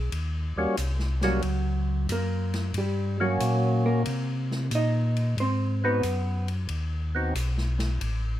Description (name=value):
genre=soul jazz organ trio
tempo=91 BPM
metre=4/4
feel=swing 68% on 8ths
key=unclear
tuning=A4 = 441 Hz
part: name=hollow-body jazz guitar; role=accompaniment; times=0.0-6.5 s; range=F#3 to Eb5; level=-30 LUFS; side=right 2 dB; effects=none
part: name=mellow tonewheel organ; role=bass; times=0.0-8.4 s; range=A1 to C3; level=-26 LUFS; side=equal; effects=slow rotary speaker
part: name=swinging big-band drum kit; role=drums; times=0.1-8.2 s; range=hi-hat, ride cymbal, snare drum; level=-38 LUFS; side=left 2 dB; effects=none
part: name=percussive tonewheel organ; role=melody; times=0.6-7.3 s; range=G3 to F#4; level=-28 LUFS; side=equal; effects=slow rotary speaker, overdrive, plate reverb
room=light reverb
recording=none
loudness=-24 LUFS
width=side -13 dB against mid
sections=0.0-8.4 A section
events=hollow-body jazz guitar solo 0.0-8.4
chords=0.1 Eb7#9; 5.4 Ab7#9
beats=| 0.12 0.78 1.43 2.09 | 2.75 3.41 4.06 4.72 | 5.38 6.04 6.70 7.35 | 8.01